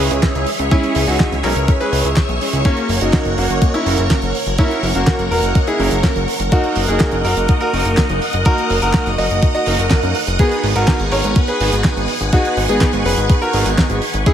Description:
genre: italo disco.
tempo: 124 BPM.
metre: 4/4.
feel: straight.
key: G# minor.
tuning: A4 = 436 Hz.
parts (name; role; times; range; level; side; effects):
bright concert grand piano; melody; 0.0-14.3 s; F#3 to D#5; -20 LUFS; equal; digital delay, shimmer reverb.
phased string machine; sustained chords; 0.0-14.3 s; G#4 to E6; -22 LUFS; equal; ensemble chorus, phaser, shimmer reverb.
analog synth brass; stabs; 0.0-14.3 s; G#3 to D#5; -23 LUFS; right 3 dB; chorus, cassette tape, shimmer reverb.
fat analog bass; bass; 0.0-14.2 s; E1 to F#2; -20 LUFS; equal; none.
damped 70s drum kit; drums; 0.1-14.3 s; handclaps, hi-hat, snare drum; -22 LUFS; right 1 dB; none.
electronic kick drum; drums; 0.2-14.3 s; none; -15 LUFS; equal; overdrive.
room: light reverb, studio reverb.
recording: none.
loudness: -13 LUFS.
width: side -10 dB against mid.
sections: 0.0-14.3 A section.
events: none.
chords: 0.0 C#m; 2.6 F#; 6.5 D#m/F#; 10.4 G#m7.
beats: 0.23 | 0.71 1.20 1.68 2.17 | 2.65 3.13 3.62 4.10 | 4.58 5.07 5.55 6.04 | 6.52 7.00 7.49 7.97 | 8.46 8.94 9.42 9.91 | 10.39 10.88 11.36 11.84 | 12.33 12.81 13.29 13.78 | 14.26.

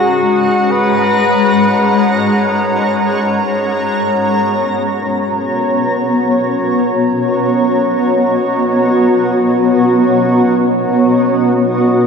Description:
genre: ambient.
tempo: free time.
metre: none.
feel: none.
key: B major.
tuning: A4 = 435 Hz.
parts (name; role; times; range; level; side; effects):
clear flugelhorn; melody; 0.0-2.3 s; F#4 to B4; -17 LUFS; left 3 dB; tape echo.
granular cloud pad; sustained chords; 0.0-12.1 s; G#3 to A#5; -12 LUFS; equal; built-in reverb.
handpan; arpeggios; 0.0-0.5 s; none; barely audible; none; none.
backwards swelling texture; texture; 0.0-3.9 s; A#5 to A#6; -24 LUFS; right 1 dB; built-in reverb.
room: wet concert hall reverb, RT60 2.3 s.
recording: none.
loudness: -11 LUFS.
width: side -6 dB against mid.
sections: 0.0-3.9 A section; 3.9-12.1 B section.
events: filter sweep on ambient pad 3.9-12.1.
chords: 0.0 G#m11; 3.9 Bmaj7.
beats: free time.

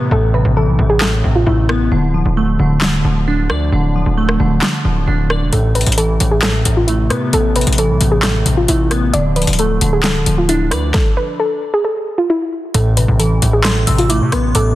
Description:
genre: hip hop, trap.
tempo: 133 BPM.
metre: 4/4.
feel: half-time.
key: A minor.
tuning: A4 = 439 Hz.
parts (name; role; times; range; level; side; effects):
soft round pluck; melody; 0.0-1.9, 5.5-14.7 s; E4 to D5; -18 LUFS; equal; chorus, tape echo.
glassy digital keys; accompaniment; 0.0-14.8 s; A2 to D5; -16 LUFS; equal; chorus.
distorted 808-style bass; bass; 0.0-14.8 s; C1 to C3; -16 LUFS; equal; distortion.
dubstep drum kit; drums; 1.0-14.7 s; handclaps, hi-hat, kick drum, rim click, snare drum; -19 LUFS; left 1 dB; none.
glassy synth bell; second line; 13.6-14.8 s; C6 to E6; -23 LUFS; equal; chorus, tape echo.
room: light reverb, digital ambience.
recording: dense, heavily limited modern master.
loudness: -12 LUFS.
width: side -15 dB against mid.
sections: 0.0-12.7 A section; 12.7-14.8 B section.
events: break 0.0-5.5; stop 10.9-12.7.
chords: 0.0 Amadd9; 1.9 Dm; 5.5 Amadd9; 9.1 Dm; 12.7 Amadd9.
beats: | 0.11 0.56 1.01 1.47 | 1.92 2.37 2.82 3.27 | 3.72 4.17 4.62 5.08 | 5.53 5.98 6.43 6.88 | 7.33 7.78 8.23 8.68 | 9.13 9.59 10.04 10.49 | 10.94 11.39 11.84 12.29 | 12.74 13.20 13.65 14.10 | 14.55.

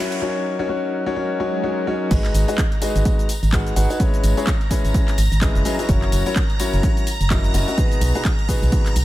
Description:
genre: piano house.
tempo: 127 BPM.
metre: 4/4.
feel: swing 58% on 16ths.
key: G# minor.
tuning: A4 = 440 Hz.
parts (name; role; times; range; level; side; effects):
string machine, violins; sustained chords; 0.0-9.0 s; F#5 to A#6; -31 LUFS; right 1 dB; ensemble chorus, sidechain pumping.
clear concert grand piano; riff; 0.0-8.9 s; B2 to F#5; -23 LUFS; left 2 dB; sidechain pumping, dub echo.
riser and swell; sound effects; 0.0-2.1 s; none; -32 LUFS; right 3 dB; none.
house drum kit; drums; 0.1-9.0 s; crash cymbal, handclaps, hi-hat, shaker; -30 LUFS; equal; high-pass filter on snare, studio ambience, high-pass filter on hats, high-pass filter on cymbals, high-pass filter on perc.
organ-like FM bass; bass; 2.1-9.0 s; F#1 to B1; -19 LUFS; equal; sidechain pumping.
electronic kick drum; drums; 2.1-8.8 s; none; -20 LUFS; equal; studio ambience.
tambourine; percussion; 2.1-9.0 s; none; -36 LUFS; left 4 dB; none.
room: digital ambience.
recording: none.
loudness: -17 LUFS.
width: side -15 dB against mid.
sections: 0.0-2.1 A section; 2.1-9.0 B section.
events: build-up 0.0-2.1; drum fill 0.0; riser 0.0; swell 1.3-2.1; drop 2.1-9.0.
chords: 0.2 F#6; 2.1 G#m7; 4.0 C#m7/G#; 5.9 F#7; 7.8 B6.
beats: | 0.22 0.69 1.16 1.64 | 2.11 2.58 3.05 3.53 | 4.00 4.47 4.94 5.42 | 5.89 6.36 6.83 7.31 | 7.78 8.25 8.72.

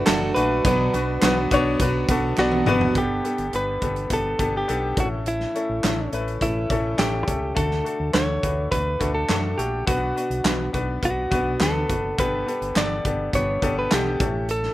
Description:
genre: piano-driven pop.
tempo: 104 BPM.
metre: 4/4.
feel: straight.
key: unclear.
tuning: A4 = 445 Hz.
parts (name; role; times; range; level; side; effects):
direct-recorded clean electric guitar; melody; 0.0-14.7 s; E4 to D5; -26 LUFS; equal; slapback echo.
bright grand piano; accompaniment; 0.0-14.7 s; G2 to B5; -26 LUFS; left 3 dB; slapback echo.
picked plugged-in steel-string acoustic guitar; riff; 0.0-3.5 s; B2 to F#4; -25 LUFS; right 4 dB; none.
fingered electric bass; bass; 0.1-14.7 s; F#1 to F#2; -28 LUFS; equal; none.
modern studio drum kit; drums; 0.1-14.7 s; handclaps, hi-hat, kick drum, snare drum, toms; -25 LUFS; equal; none.
group handclap; percussion; 0.1-2.5, 12.8-14.1 s; none; -35 LUFS; right 4 dB; none.
room: little or no reverb.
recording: none.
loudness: -20 LUFS.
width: side -15 dB against mid.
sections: 0.0-3.0 A section; 3.0-14.7 B section.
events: grand piano fill 2.1-3.0; drum fill 2.4-3.0.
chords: 0.0 D/F#; 0.6 Bm; 3.0 Gadd9; 5.0 A; 7.6 D; 9.9 Bm; 12.2 Gadd9; 14.2 A.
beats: 0.07 | 0.65 1.22 1.80 2.38 | 2.95 3.53 4.11 4.68 | 5.26 5.84 6.42 6.99 | 7.57 8.15 8.72 9.30 | 9.88 10.45 11.03 11.61 | 12.18 12.76 13.34 13.91 | 14.49.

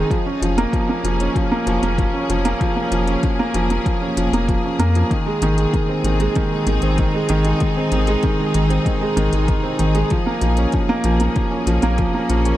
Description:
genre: piano and strings electronica.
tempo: 96 BPM.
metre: 4/4.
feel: straight.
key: unclear.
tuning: A4 = 440 Hz.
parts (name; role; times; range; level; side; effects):
bright studio string section; sustained chords; 0.0-12.6 s; Bb3 to Ab4; -26 LUFS; left 1 dB; sidechain pumping.
felt-muted upright piano; riff; 0.0-12.6 s; Eb3 to Db4; -19 LUFS; right 1 dB; digital delay.
round analog bass; bass; 0.0-12.5 s; F1 to F2; -20 LUFS; left 1 dB; sidechain pumping.
electronic hi-hat; drums; 0.1-12.6 s; none; -32 LUFS; left 4 dB; none.
electronic kick drum; drums; 0.1-12.1 s; none; -21 LUFS; left 1 dB; overdrive.
room: light reverb.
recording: none.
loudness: -16 LUFS.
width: side -14 dB against mid.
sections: 0.0-12.6 A section.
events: none.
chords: 0.1 Db6/F; 5.1 Ab; 10.1 Bbm7.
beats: | 0.11 0.73 1.36 1.98 | 2.61 3.23 3.86 4.48 | 5.11 5.73 6.36 6.98 | 7.61 8.23 8.86 9.48 | 10.11 10.73 11.36 11.98.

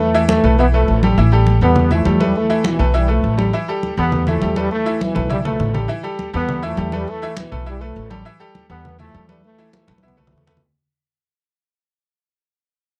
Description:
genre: latin, salsa.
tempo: 203 BPM.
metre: 4/4.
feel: straight.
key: unclear.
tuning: A4 = 443 Hz.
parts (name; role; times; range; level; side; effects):
dark trombone section; melody; 0.0-10.5 s; B2 to B3; -22 LUFS; equal; none.
bright grand piano; accompaniment; 0.0-10.6 s; E3 to E5; -25 LUFS; equal; none.
upright bass; bass; 0.0-10.6 s; A1 to E2; -20 LUFS; equal; none.
congas; percussion; 0.1-10.6 s; none; -25 LUFS; equal; none.
room: little or no reverb.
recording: dry, close 1970s-style studio recording.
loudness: -17 LUFS.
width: mono.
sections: 0.0-1.2 A section; 1.2-10.6 A section.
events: fade-out 1.2-10.6; drum fill 5.0-5.9, 9.9-10.6.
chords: 0.0 A5; 7.1 Esus4; 8.3 A5; 9.4 Esus4.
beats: 0.29 0.58 0.88 | 1.17 1.47 1.76 2.06 | 2.35 2.65 2.94 3.24 | 3.54 3.83 4.12 4.42 | 4.71 5.01 5.31 5.60 | 5.90 6.19 6.49 6.78 | 7.08 7.37 7.67 7.96 | 8.26 8.55 8.85 9.14 | 9.44 9.73 10.03 10.32.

